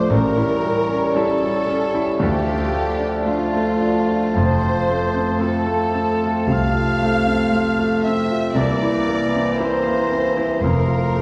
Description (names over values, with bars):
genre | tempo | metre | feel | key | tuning
classical | 58 BPM | 4/4 | rubato | unclear | A4 = 440 Hz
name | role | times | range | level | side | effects
clear grand piano | melody | 0.0-11.2 s | A1 to F4 | -24 LUFS | equal | none
rich symphonic violin section | melody | 0.0-11.2 s | F4 to F5 | -36 LUFS | equal | none
clear oboe | second line | 0.0-11.2 s | A5 to C#6 | -32 LUFS | equal | none
concert flute | second line | 0.0-11.2 s | F5 to F6 | -31 LUFS | equal | none
mellow clarinet | second line | 0.0-11.2 s | F4 to F5 | -31 LUFS | equal | none
warm symphonic violin section | second line | 0.0-11.2 s | F4 to F5 | -30 LUFS | equal | none
warm bassoon | accompaniment | 0.0-11.2 s | E3 to G3 | -30 LUFS | equal | none
warm French horn section | sustained chords | 0.0-11.2 s | G3 to F4 | -28 LUFS | equal | none
clear symphonic cello section | bass | 0.1-11.2 s | C2 to A2 | -29 LUFS | equal | none
rich symphonic double bass section | bass | 0.1-11.2 s | F1 to D2 | -28 LUFS | equal | none
rich symphonic viola section | accompaniment | 1.2-10.4 s | G3 to E4 | -32 LUFS | equal | none
room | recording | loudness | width
wet scoring stage reverb, RT60 2.0 s | heard from further back in the room, vinyl crackle | -19 LUFS | mono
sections
0.0-11.2 A section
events
none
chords
0.1 A7b9; 2.2 Dm; 4.4 F; 8.6 C7; 10.6 F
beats
| 0.11 1.16 2.22 3.26 | 4.36 5.40 6.49 7.53 | 8.55 9.58 10.62